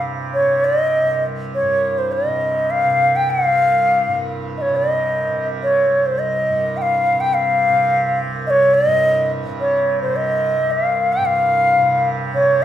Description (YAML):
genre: indian classical, Hindustani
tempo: 101-110 BPM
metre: 7/4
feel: straight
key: C raga bhairavi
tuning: A4 = 440 Hz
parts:
  - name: bright reedy bansuri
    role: melody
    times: 0.0-12.6 s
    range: C5 to G5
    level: -15 LUFS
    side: equal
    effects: none
  - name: tanpura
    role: drone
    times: 0.0-12.6 s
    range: C2 to C3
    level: -25 LUFS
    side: right 2 dB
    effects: none
room: moderate recital hall reverb, RT60 1.4 s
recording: minimal, uncompressed stereo recording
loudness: -15 LUFS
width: side -11 dB against mid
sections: 0.0-12.6 A section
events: speeding up 0.0-12.6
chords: none